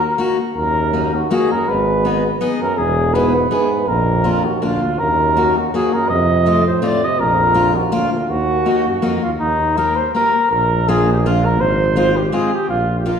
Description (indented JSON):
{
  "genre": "alpine folk, alpine dance band",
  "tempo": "164 BPM",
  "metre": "3/4",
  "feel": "swing 53% on 8ths, rubato",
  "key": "Eb minor, Eb major from 9.4 s",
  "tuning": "A4 = 440 Hz",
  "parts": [
    { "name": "mellow flugelhorn", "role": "melody", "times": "0.0-13.2 s", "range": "Eb4 to Eb5", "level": "-17 LUFS", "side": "equal", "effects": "none" },
    { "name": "mellow tuba", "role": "bass", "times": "0.0-13.2 s", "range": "E1 to Gb2", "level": "-20 LUFS", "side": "equal", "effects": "none" },
    { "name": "picked steel-string acoustic guitar", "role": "accompaniment", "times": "0.2-13.2 s", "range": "Ab3 to Ab4", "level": "-21 LUFS", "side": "left 3 dB", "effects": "none" },
    { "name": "warm euphonium", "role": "second line", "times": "0.6-9.2 s", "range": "D2 to C3", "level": "-23 LUFS", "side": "right 3 dB", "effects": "none" }
  ],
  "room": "wet recital hall reverb, RT60 1.4 s",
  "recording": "recorded in a church or concert hall",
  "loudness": "-14 LUFS",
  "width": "side -7 dB against mid",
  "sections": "0.0-9.4 A section; 9.4-13.2 B section",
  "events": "none",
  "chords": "0.0 Ebm; 1.7 Abm; 2.8 E; 3.9 Bb; 5.0 Ebm; 6.1 F7; 7.2 Bb; 8.3 Ebm; 9.4 Eb; 10.5 Bb; 11.6 Fm/Ab; 12.7 Bbsus4"
}